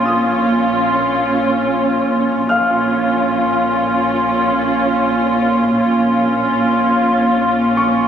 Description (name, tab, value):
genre	cinematic, suspense film score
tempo	74 BPM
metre	4/4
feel	straight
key	Bb minor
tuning	A4 = 440 Hz
part	muted studio viola section	accompaniment	0.0-8.1 s	Db4 to F4	-16 LUFS	equal	none
part	muted studio cello section	bass	0.0-8.1 s	Bb2	-18 LUFS	right 1 dB	none
part	muted studio double bass section	bass	0.0-8.1 s	Bb1	-30 LUFS	right 3 dB	none
part	pure sine sub bass	drone	0.0-8.1 s	Bb1	-41 LUFS	left 1 dB	none
part	bright grand piano	texture	0.1-8.1 s	F5 to F6	-22 LUFS	left 2 dB	none
room	wet scoring stage reverb, RT60 1.5 s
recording	recorded on a phone in the room, studio reverb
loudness	-13 LUFS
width	side -8 dB against mid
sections	0.0-8.1 A section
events	none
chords	0.0 Bbm